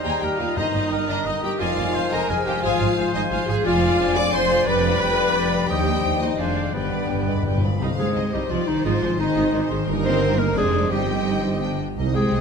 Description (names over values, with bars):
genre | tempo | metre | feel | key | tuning
classical, dramatic, fast romantic movement for symphony orchestra | 174 BPM | 3/4 | straight | C minor from 3.6 s | A4 = 440 Hz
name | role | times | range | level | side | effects
bright small flute group | second line | 0.0-7.6 s | F5 to Bb5 | -31 LUFS | left 2 dB | none
clear clarinet | second line | 0.0-12.4 s | Eb4 to Eb5 | -28 LUFS | left 2 dB | none
clear oboe | second line | 0.0-7.6 s | Ab4 to Eb5 | -32 LUFS | right 1 dB | none
rich symphonic violin section | second line | 0.0-12.4 s | Ab4 to B5 | -31 LUFS | left 3 dB | none
warm bassoon | accompaniment | 0.0-7.8 s | Eb3 to Ab3 | -32 LUFS | right 3 dB | none
warm symphonic viola section | accompaniment | 0.0-12.4 s | G3 to D5 | -27 LUFS | right 2 dB | none
mellow French horn section | sustained chords | 0.0-7.6 s | B3 to D5 | -28 LUFS | left 5 dB | none
concert harp | arpeggios | 0.0-12.4 s | F2 to Eb6 | -28 LUFS | left 9 dB | none
rich symphonic double bass section | bass | 0.0-12.4 s | F1 to Eb2 | -28 LUFS | right 4 dB | none
warm studio violin section | melody | 0.1-12.4 s | Bb4 to D6 | -30 LUFS | left 3 dB | none
warm symphonic cello section | bass | 0.1-12.4 s | Eb2 to C4 | -28 LUFS | right 4 dB | none
timpani | percussion | 0.6-1.1, 6.7-8.3 s | G2 to C3 | -28 LUFS | left 2 dB | none
dark tuba | bass | 7.8-12.4 s | F1 to C2 | -29 LUFS | right 6 dB | none
room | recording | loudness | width
moderate scoring stage reverb, RT60 1.8 s | close, detailed microphones | -19 LUFS | side -6 dB against mid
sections
0.0-7.8 A section; 7.8-12.4 B section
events
timpani fill 6.7-7.8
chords
0.0 Eb; 0.6 Eb/G; 1.6 Fm7; 2.6 Fm/Ab; 3.6 Dm7b5/F; 4.7 G7/F; 5.7 Cm/Eb; 6.4 Ddim/F; 6.7 G; 7.8 Cm; 8.8 Ab; 9.9 Eb/G; 10.6 Dm7b5/F; 10.9 Cm/G; 11.6 G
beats
0.22 | 0.57 0.91 1.26 | 1.60 1.95 2.29 | 2.63 2.97 3.31 | 3.65 3.99 4.33 | 4.67 5.01 5.35 | 5.70 6.04 6.39 | 6.75 7.10 7.46 | 7.81 8.16 8.51 | 8.85 9.19 9.53 | 9.87 10.21 10.56 | 10.91 11.27 11.62 | 11.98 12.33